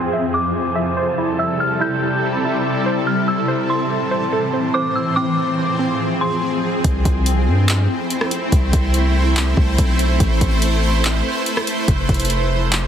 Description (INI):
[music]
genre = hip hop, atmospheric cloud-rap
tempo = 143 BPM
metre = 4/4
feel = half-time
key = C major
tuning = A4 = 440 Hz
[part]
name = shimmering ambient pad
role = sustained chords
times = 0.0-12.9 s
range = F2 to C5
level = -20 LUFS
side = equal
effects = chorus, built-in reverb, sidechain pumping, low-pass filter
[part]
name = glassy wavetable pluck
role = arpeggios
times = 0.0-6.8 s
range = C4 to E5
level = -25 LUFS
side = right 2 dB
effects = chorus, low-pass filter, digital delay
[part]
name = wind-like tuned noise texture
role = texture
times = 0.0-6.8 s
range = C4 to A5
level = -30 LUFS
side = right 2 dB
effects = built-in reverb
[part]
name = dark detuned synth bell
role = melody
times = 0.3-6.4 s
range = C6 to G6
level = -23 LUFS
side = equal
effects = chorus, low-pass filter, digital delay
[part]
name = long sustained 808-style bass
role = bass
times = 6.8-12.9 s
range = F1 to G2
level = -17 LUFS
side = equal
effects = none
[part]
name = smooth R&B drum kit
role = drums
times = 6.8-12.8 s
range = handclaps, hi-hat, kick drum, rim click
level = -19 LUFS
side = equal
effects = overdrive
[sound]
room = light reverb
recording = heavily compressed radio sound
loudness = -16 LUFS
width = side -9 dB against mid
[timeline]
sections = 0.0-6.8 A section; 6.8-12.9 B section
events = filter sweep 0.0-6.8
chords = 0.1 C6; 3.5 Am; 5.2 Fm; 6.8 C6; 10.2 Amadd9; 11.9 Fm